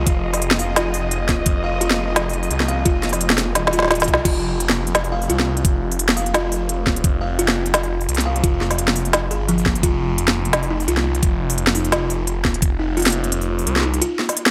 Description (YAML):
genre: half-time drum and bass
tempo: 172 BPM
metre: 4/4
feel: swing 54% on 16ths, half-time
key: F minor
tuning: A4 = 441 Hz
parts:
  - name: dark studio cello section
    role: sustained chords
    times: 0.0-4.3 s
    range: F3 to Eb5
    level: -31 LUFS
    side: equal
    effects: sidechain pumping
  - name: phased detuned saw bass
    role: bass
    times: 0.0-14.0 s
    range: Eb1 to C2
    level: -25 LUFS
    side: equal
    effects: phaser
  - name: electronic kick drum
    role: drums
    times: 0.1-12.7 s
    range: none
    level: -22 LUFS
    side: equal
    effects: none
  - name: organic electronic drum kit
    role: drums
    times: 0.1-14.5 s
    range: crash cymbal, hi-hat, snare drum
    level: -22 LUFS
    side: equal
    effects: overdrive
  - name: buzzing kalimba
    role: arpeggios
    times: 0.6-14.2 s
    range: F3 to F5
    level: -27 LUFS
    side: equal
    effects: dub echo
room: light reverb, digital ambience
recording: none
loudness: -19 LUFS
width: mono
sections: 0.0-4.2 A section; 4.2-14.5 A section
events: drop 0.0-4.2, 4.2-14.5; drum fill 3.6-4.2; band accent 4.1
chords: 0.0 Fm; 4.2 F5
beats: | 0.06 0.41 0.76 1.11 | 1.46 1.81 2.16 2.51 | 2.85 3.20 3.55 3.90 | 4.25 4.60 4.95 5.30 | 5.64 5.99 6.34 6.69 | 7.04 7.39 7.74 8.09 | 8.44 8.79 9.13 9.48 | 9.83 10.18 10.53 10.88 | 11.23 11.58 11.93 12.27 | 12.62 12.97 13.32 13.67 | 14.02 14.37